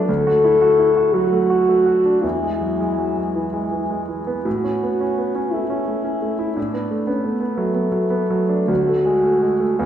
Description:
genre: classical, romantic duo for French horn and grand piano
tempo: 56 BPM (dotted quarters)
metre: 6/8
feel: uneven beats, rubato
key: unclear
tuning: A4 = 439 Hz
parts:
  - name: mellow French horn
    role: melody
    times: 0.0-9.9 s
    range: A3 to A4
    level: -18 LUFS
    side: left 1 dB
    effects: none
  - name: clear concert grand piano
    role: accompaniment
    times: 0.0-9.9 s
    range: D2 to F#4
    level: -21 LUFS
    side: right 2 dB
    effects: none
room: wet recital hall reverb, RT60 1.4 s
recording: recorded in a church or concert hall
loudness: -17 LUFS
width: side -10 dB against mid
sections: 0.0-9.9 A section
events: none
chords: 0.1 D; 2.2 E; 4.5 A; 6.6 Bm7/A; 8.7 D

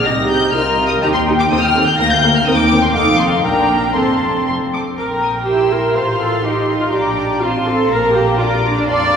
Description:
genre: quick classical-period movement for string orchestra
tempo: 123 BPM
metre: 2/4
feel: rubato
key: Bb major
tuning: A4 = 441 Hz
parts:
  - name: rich studio violin section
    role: melody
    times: 0.0-9.2 s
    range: A5 to Bb6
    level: -19 LUFS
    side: left 2 dB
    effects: none
  - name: dark studio violin section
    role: second line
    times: 0.0-9.2 s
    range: D5 to D6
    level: -20 LUFS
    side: left 2 dB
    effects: none
  - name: rich studio viola section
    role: accompaniment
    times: 0.0-9.2 s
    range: Bb3 to D5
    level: -17 LUFS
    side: right 1 dB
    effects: none
  - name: dark studio cello section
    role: bass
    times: 0.0-9.2 s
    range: C2 to F4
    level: -22 LUFS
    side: right 1 dB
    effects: none
  - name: warm studio double bass section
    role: bass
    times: 0.0-9.2 s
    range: F1 to F2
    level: -23 LUFS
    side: equal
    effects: none
room: wet church reverb, RT60 3.4 s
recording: recorded in a church or concert hall, studio reverb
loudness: -13 LUFS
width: side -7 dB against mid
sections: 0.0-5.0 A section; 5.0-9.2 B section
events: none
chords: 0.1 Cm7; 1.0 Eb; 1.5 F7/Eb; 2.0 Bb/D; 2.5 Cm7/Eb; 2.9 F7; 3.4 Bb; 4.0 F; 5.0 N.C.; 5.5 C7/Bb; 6.0 F/A; 6.9 Bb; 7.4 F/A; 7.9 Bb

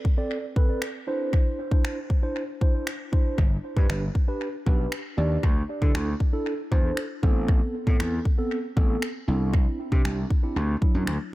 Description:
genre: dance-pop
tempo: 117 BPM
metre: 4/4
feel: straight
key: unclear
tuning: A4 = 439 Hz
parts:
  - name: pop drum kit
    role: drums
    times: 0.0-11.2 s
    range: finger snaps, kick drum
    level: -23 LUFS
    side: equal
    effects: none
  - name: mellow tine electric piano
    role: accompaniment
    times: 0.2-11.1 s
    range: F#3 to D5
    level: -30 LUFS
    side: right 2 dB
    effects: sidechain pumping, analog delay
  - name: gritty slap bass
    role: bass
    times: 3.4-11.2 s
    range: G1 to D3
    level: -26 LUFS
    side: equal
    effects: overdrive, sidechain pumping
room: little or no reverb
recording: echo-heavy mix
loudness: -22 LUFS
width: side -18 dB against mid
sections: 0.0-11.3 A section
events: none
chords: 0.0 Amadd9; 1.1 Cadd9; 3.4 G; 5.4 Dsus2; 7.2 Amadd9; 9.3 Cadd9; 10.6 Dadd9

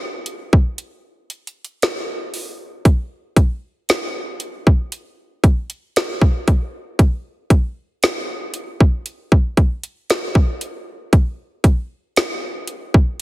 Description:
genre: R&B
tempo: 58 BPM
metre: 4/4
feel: straight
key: none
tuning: none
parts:
  - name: trap drum kit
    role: drums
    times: 0.3-13.2 s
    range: hi-hat, kick drum, snare drum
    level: -15 LUFS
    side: equal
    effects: none
room: light reverb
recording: heavily compressed radio sound, multiband compression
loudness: -16 LUFS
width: side -18 dB against mid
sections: 0.0-13.2 A section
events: break 0.8-2.9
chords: none

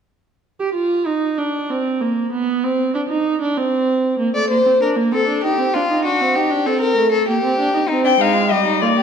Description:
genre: classical, baroque-style fugue for string quartet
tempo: 97 BPM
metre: 3/4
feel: straight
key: C minor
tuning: A4 = 436 Hz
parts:
  - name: warm viola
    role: accompaniment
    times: 0.6-9.0 s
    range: G3 to G4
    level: -18 LUFS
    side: right 3 dB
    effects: none
  - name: rich violin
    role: second line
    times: 4.3-9.0 s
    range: D4 to D5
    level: -17 LUFS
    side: left 2 dB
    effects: none
  - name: dark violin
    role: melody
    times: 8.1-9.0 s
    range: D5 to G5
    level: -16 LUFS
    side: left 8 dB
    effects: none
room: wet recital hall reverb, RT60 1.8 s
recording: dark, warm production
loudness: -16 LUFS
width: side -7 dB against mid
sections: 0.4-9.0 A section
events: none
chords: 0.4 N.C.; 4.2 Bbmaj9/A; 5.4 Cm (rootless); 6.0 D7; 7.3 G5; 7.9 Cm

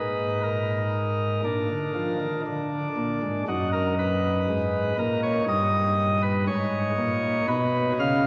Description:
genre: classical, chorale-style piece for pipe organ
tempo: 60 BPM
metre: 4/4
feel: rubato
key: Eb minor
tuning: A4 = 440 Hz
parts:
  - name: chamber organ, principal chorus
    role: solo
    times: 0.0-8.3 s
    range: Gb2 to F5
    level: -25 LUFS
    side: equal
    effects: none
room: wet cathedral reverb, RT60 4.0 s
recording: vinyl crackle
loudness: -25 LUFS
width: mono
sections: 0.0-8.3 A section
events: none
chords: 0.0 Bbsus4; 1.4 Bb; 3.5 Ebm/Gb; 5.5 Eb7/G; 7.5 Badd9

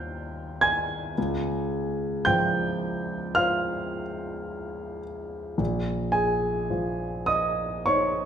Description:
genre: classical, impressionist solo piano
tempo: 49-57 BPM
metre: 4/4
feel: rubato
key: unclear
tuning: A4 = 440 Hz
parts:
  - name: warm concert grand piano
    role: solo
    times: 0.0-8.3 s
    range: Bb1 to Ab6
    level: -25 LUFS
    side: right 1 dB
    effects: none
room: wet recital hall reverb, RT60 1.4 s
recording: minimal, uncompressed stereo recording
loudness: -24 LUFS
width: side -8 dB against mid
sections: 0.0-8.3 A section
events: none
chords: 0.0 Eb69; 1.2 Dbmaj7; 5.6 Bbm11

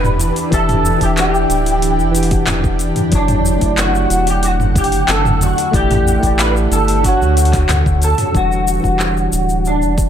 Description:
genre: sunset chillout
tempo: 92 BPM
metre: 4/4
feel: straight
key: E dorian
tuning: A4 = 440 Hz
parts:
  - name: electric guitar through a small old amp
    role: melody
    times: 0.0-10.1 s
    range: D4 to B4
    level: -18 LUFS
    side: equal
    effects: ensemble chorus, digital delay
  - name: tine electric piano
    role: accompaniment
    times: 0.0-10.1 s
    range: D3 to G5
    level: -20 LUFS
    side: moving between left 5 dB and right 6 dB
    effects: auto-pan, digital delay
  - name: shimmering ambient pad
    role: sustained chords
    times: 0.0-8.3 s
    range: D3 to F#5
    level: -23 LUFS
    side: right 1 dB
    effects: chorus, built-in reverb
  - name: round analog bass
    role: bass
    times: 0.0-10.1 s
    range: D1 to D2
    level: -18 LUFS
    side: equal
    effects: none
  - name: deep house drum kit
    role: drums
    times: 0.0-10.1 s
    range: handclaps, hi-hat, shaker, toms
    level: -20 LUFS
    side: equal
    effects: overdrive
  - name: electronic kick drum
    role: drums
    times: 0.5-10.1 s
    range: none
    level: -18 LUFS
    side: equal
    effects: overdrive
room: light reverb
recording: none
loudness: -12 LUFS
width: side -9 dB against mid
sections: 0.0-8.3 A section; 8.3-10.1 B section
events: none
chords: 0.0 Em7; 3.1 Dmaj7; 5.7 A7sus4; 7.0 Dmaj7; 8.3 Em9

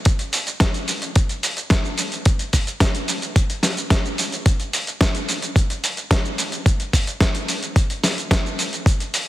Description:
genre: nu-disco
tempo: 109 BPM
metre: 4/4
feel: straight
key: none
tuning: none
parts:
  - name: dusty soul sampler-style drum kit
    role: drums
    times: 0.1-9.3 s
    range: hi-hat, shaker, snare drum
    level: -22 LUFS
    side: equal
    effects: overdrive
  - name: electronic kick drum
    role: drums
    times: 0.1-9.0 s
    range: none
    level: -18 LUFS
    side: equal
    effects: overdrive
room: light reverb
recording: heavily compressed radio sound, multiband compression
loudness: -18 LUFS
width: side -15 dB against mid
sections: 0.0-9.3 A section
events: none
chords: none

